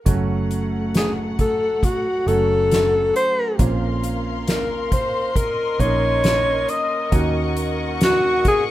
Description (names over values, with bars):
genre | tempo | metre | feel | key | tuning
pop ballad | 68 BPM | 4/4 | straight | unclear | A4 = 440 Hz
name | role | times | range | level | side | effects
warm baby grand piano | accompaniment | 0.1-8.7 s | Bb2 to Gb4 | -27 LUFS | right 4 dB | none
warm studio string section | sustained chords | 0.1-8.7 s | A3 to Db6 | -28 LUFS | left 2 dB | plate reverb
vintage muted fingered electric bass | bass | 0.1-8.7 s | Gb1 to Eb2 | -25 LUFS | equal | none
soft-mallet drum kit | drums | 0.1-8.7 s | hi-hat, kick drum, snare drum | -22 LUFS | equal | none
warm alto saxophone | melody | 1.0-8.6 s | Gb4 to Eb5 | -20 LUFS | left 1 dB | plate reverb
room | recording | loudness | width
moderate studio reverb, RT60 0.5 s | rough home demo mix | -17 LUFS | side -14 dB against mid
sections
0.0-8.7 A section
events
none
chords
0.1 Gbm; 3.6 Bbmadd9; 7.1 Ebm7